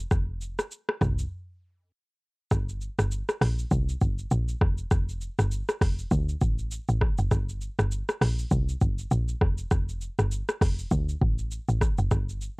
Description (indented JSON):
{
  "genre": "afrobeats",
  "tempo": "100 BPM",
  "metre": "4/4",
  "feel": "swing 58% on 16ths",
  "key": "G minor",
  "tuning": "A4 = 438 Hz",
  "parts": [
    { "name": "woody log drum bass", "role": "bass", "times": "0.0-12.5 s", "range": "F1 to D2", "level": "-27 LUFS", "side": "equal", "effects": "transformer saturation" },
    { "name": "afro-pop drum kit", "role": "drums", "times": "0.1-12.6 s", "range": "hi-hat, kick drum, rim click, shaker, toms", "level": "-27 LUFS", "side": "equal", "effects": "overdrive" }
  ],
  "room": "little or no reverb",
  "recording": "dry, gritty hardware recording, cassette tape",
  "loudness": "-25 LUFS",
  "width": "side -31 dB against mid",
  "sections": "0.0-2.5 A section; 2.5-12.6 B section",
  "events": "break 1.3-2.5",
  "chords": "none"
}